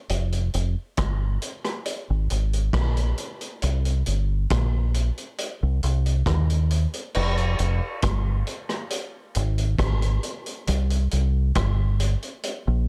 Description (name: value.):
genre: dub reggae.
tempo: 68 BPM.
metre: 4/4.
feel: straight.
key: F minor.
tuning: A4 = 441 Hz.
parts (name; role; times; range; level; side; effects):
deep dub fingered electric bass; bass; 0.1-12.9 s; F1 to Eb2; -24 LUFS; equal; none.
vintage drum kit; drums; 0.1-12.6 s; crash cymbal, hi-hat, kick drum, rim click; -31 LUFS; equal; none.
room: little or no reverb.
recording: dark, warm production.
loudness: -25 LUFS.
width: mono.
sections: 0.0-7.1 A section; 7.1-12.9 B section.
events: none.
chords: none.